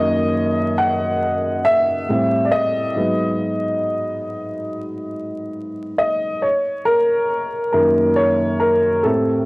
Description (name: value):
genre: hip hop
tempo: 69 BPM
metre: 4/4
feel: swing 55% on 16ths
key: F# major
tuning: A4 = 443 Hz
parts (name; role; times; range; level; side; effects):
- dark upright piano; solo; 0.0-9.5 s; F#2 to F#5; -17 LUFS; equal; none
room: moderate studio reverb, RT60 0.6 s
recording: worn, warbling old tape, cassette tape, vinyl crackle, warbly pitch drift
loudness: -17 LUFS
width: side -25 dB against mid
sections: 0.0-9.5 A section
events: upright piano solo 0.0-9.5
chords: 0.0 F#6; 2.1 Am7; 3.0 G#m7; 6.4 F#6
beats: 0.35 1.22 2.09 | 2.96 3.83 4.70 5.57 | 6.44 7.31 8.18 9.05